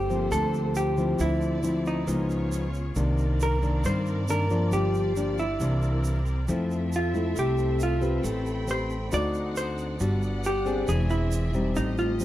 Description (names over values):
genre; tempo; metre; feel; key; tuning
bossa nova; 136 BPM; 4/4; straight; G minor; A4 = 437 Hz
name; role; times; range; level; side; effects
vintage hollow-body jazz guitar; melody; 0.0-12.2 s; Eb4 to D5; -29 LUFS; equal; none
nylon-string guitar; accompaniment; 0.0-12.2 s; G2 to B4; -28 LUFS; left 2 dB; none
rich symphonic string section; sustained chords; 0.0-12.2 s; A3 to B5; -38 LUFS; right 1 dB; none
upright bass; bass; 0.0-12.2 s; E1 to G2; -28 LUFS; right 1 dB; none
tube shaker; percussion; 0.1-12.2 s; none; -44 LUFS; right 7 dB; none
room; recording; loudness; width
studio ambience; dry, close 1970s-style studio recording; -24 LUFS; side -13 dB against mid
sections
0.0-12.2 A section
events
none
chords
0.0 Gm11; 1.2 Dm9; 2.1 C#9; 3.0 Cm9; 4.7 Gm7; 5.6 C9; 6.5 Fmaj7; 8.2 Am9; 9.1 D7b9; 10.0 Gmaj7; 10.9 E7alt